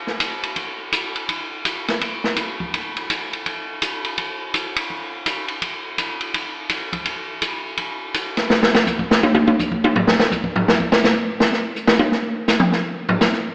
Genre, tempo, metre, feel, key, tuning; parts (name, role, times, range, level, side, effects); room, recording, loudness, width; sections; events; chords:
jazz; 166 BPM; 4/4; swing 63% on 8ths
open jazz drum kit; drums; 0.1-13.4 s; hi-hat, kick drum, ride cymbal, snare drum, toms; -18 LUFS; equal
wet church reverb, RT60 2.8 s; recorded in a church or concert hall, AM radio sound; -18 LUFS; side -32 dB against mid
0.0-8.5 A section; 8.5-13.5 B section
drum solo 8.5-13.5